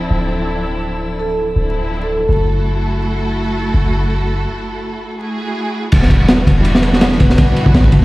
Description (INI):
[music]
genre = drum and bass, jungle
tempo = 165 BPM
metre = 4/4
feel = swing 55% on 16ths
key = E minor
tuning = A4 = 440 Hz
[part]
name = warm studio string section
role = sustained chords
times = 0.0-8.0 s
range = F3 to A4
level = -21 LUFS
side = equal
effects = none
[part]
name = warm 808-style bass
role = bass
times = 0.0-8.0 s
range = D1 to A1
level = -16 LUFS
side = equal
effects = none
[part]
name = drifting glass-harmonics texture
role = texture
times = 0.0-4.5 s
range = A4 to A5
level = -29 LUFS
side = left 4 dB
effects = chorus, built-in reverb
[part]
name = vibraphone with soft mallets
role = melody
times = 1.2-2.3, 7.0-7.6 s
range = A4 to B4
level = -22 LUFS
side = right 1 dB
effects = dub echo
[part]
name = crunchy breakbeat drum kit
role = drums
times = 5.9-8.0 s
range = crash cymbal, kick drum, ride cymbal, snare drum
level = -10 LUFS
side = equal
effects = none
[sound]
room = small room ambience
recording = played on a big sound system in a bare room, large studio reverb, vinyl crackle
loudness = -13 LUFS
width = side -19 dB against mid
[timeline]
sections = 0.0-5.9 A section; 5.9-8.0 B section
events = break 4.5-5.9; drop 5.9-8.0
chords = 0.0 Dm9; 2.3 F#m9; 5.9 Em9